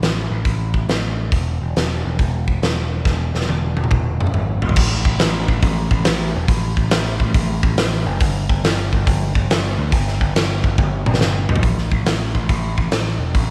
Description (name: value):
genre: blues rock power trio and southern rock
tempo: 140 BPM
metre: 4/4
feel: swing 66% on 8ths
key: unclear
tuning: A4 = 439 Hz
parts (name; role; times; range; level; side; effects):
- growling picked electric bass; bass; 0.0-13.5 s; E1 to D2; -23 LUFS; equal; overdrive
- big rock drum kit; drums; 0.0-13.5 s; crash cymbal, hi-hat, kick drum, snare drum, toms; -21 LUFS; equal; none
room: light reverb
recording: none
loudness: -19 LUFS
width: mono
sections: 0.0-4.8 A section; 4.8-11.6 B section; 11.6-13.5 C section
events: drum fill 3.1-4.8, 10.8-11.6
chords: none